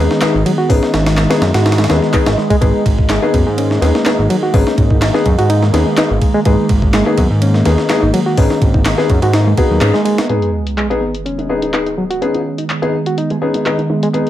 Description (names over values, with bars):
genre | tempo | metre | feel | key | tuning
breakbeat, breaks | 125 BPM | 4/4 | straight | G# minor | A4 = 440 Hz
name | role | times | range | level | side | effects
phased analog pad | sustained chords | 0.0-14.3 s | D#3 to B3 | -20 LUFS | right 1 dB | phaser, chorus, sidechain pumping
reed electric piano | riff | 0.0-14.3 s | F#3 to F#4 | -19 LUFS | right 1 dB | overdrive, low-pass filter, tape echo
warm grand piano | stabs | 0.0-14.3 s | B3 to G#4 | -18 LUFS | left 3 dB | low-pass filter, tape echo
fat analog bass | bass | 0.0-9.9 s | G#1 to G#2 | -15 LUFS | equal | tube saturation
breakbeat sampler-style drum kit | drums | 0.1-14.3 s | hi-hat, kick drum, ride cymbal, snare drum | -17 LUFS | equal | low-pass filter on snare, low-pass filter on cymbals, low-pass filter on kick, low-pass filter on hats
punchy analog drum machine | drums | 0.2-14.3 s | handclaps, hi-hat | -24 LUFS | equal | overdrive, low-pass filter on snare, low-pass filter on hats
sub drop | sound effects | 10.3-12.2 s | none | -23 LUFS | equal | none
room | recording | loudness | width
light reverb, digital ambience | none | -11 LUFS | side -12 dB against mid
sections
0.0-10.3 A section; 10.3-14.3 B section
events
band accent 9.8; impact 10.3-12.2; filter sweep on reed electric piano 10.3-14.3; filter sweep on analog synth pad 10.3-14.3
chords
0.0 G#m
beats
0.22 | 0.70 1.18 1.66 2.14 | 2.62 3.10 3.58 4.06 | 4.54 5.02 5.50 5.98 | 6.46 6.94 7.42 7.90 | 8.38 8.86 9.34 9.82 | 10.30 10.78 11.26 11.74 | 12.22 12.70 13.18 13.66 | 14.14